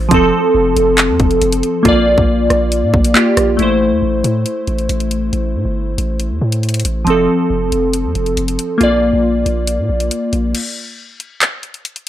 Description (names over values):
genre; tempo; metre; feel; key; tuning
hip hop, drill; 138 BPM; 4/4; half-time; A phrygian; A4 = 440 Hz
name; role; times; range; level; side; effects
glassy digital keys; accompaniment; 0.0-10.6 s; F3 to D5; -14 LUFS; equal; chorus, low-pass filter
long sustained 808-style bass; bass; 0.0-10.5 s; F1 to Bb2; -18 LUFS; equal; none
drill drum kit; drums; 0.1-12.1 s; crash cymbal, handclaps, hi-hat, kick drum, rim click; -17 LUFS; equal; none
room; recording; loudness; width
digital ambience; dry, gritty hardware recording; -12 LUFS; side -12 dB against mid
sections
0.0-3.6 A section; 3.6-10.5 B section; 10.5-12.1 C section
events
break 10.5-12.1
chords
0.1 F; 1.9 Bb; 3.6 Am; 7.1 F; 8.8 Bb; 10.5 N.C.